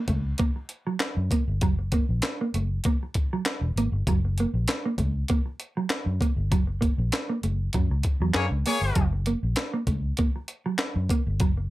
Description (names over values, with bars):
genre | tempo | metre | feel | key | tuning
funk | 98 BPM | 4/4 | straight | F# mixolydian | A4 = 440 Hz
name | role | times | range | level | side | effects
mellow electric guitar | riff | 0.0-11.6 s | F#3 to A#3 | -28 LUFS | right 3 dB | wide subtle chorus
vintage muted fingered electric bass | bass | 0.1-11.7 s | E1 to F#2 | -26 LUFS | equal | none
breakbeat sampler-style drum kit | drums | 0.1-11.6 s | handclaps, hi-hat, kick drum, snare drum | -26 LUFS | equal | none
warm horn section | second line | 8.3-9.1 s | A#3 to C#5 | -27 LUFS | left 4 dB | none
room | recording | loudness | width
little or no reverb | none | -24 LUFS | side -17 dB against mid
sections
0.0-11.7 A section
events
band accent 6.5-9.0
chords
0.0 F#